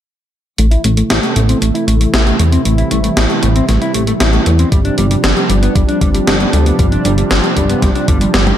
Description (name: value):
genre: synthwave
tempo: 116 BPM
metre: 4/4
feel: straight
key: A minor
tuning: A4 = 440 Hz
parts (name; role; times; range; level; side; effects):
- lush unison pad; sustained chords; 0.6-8.6 s; C3 to E4; -17 LUFS; right 2 dB; chorus
- mellow electric guitar; riff; 0.6-8.5 s; G3 to G4; -19 LUFS; left 3 dB; lush chorus, low-pass filter, ping-pong delay
- chorused synth bass; bass; 0.6-8.5 s; G1 to E2; -13 LUFS; equal; sidechain pumping
- gated 80s digital drum machine; drums; 0.6-8.6 s; hi-hat, snare drum, toms; -16 LUFS; equal; gated reverb, gated reverb snare
- electronic kick drum; drums; 4.7-8.2 s; none; -14 LUFS; equal; none
room: light reverb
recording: none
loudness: -10 LUFS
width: side -10 dB against mid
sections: 0.6-8.6 A section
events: filter sweep on analog synth bass 0.6-8.6; filter sweep on analog synth pad 0.6-8.6; filter sweep on clean electric guitar 0.6-8.6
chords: 0.6 Am; 4.7 G7sus4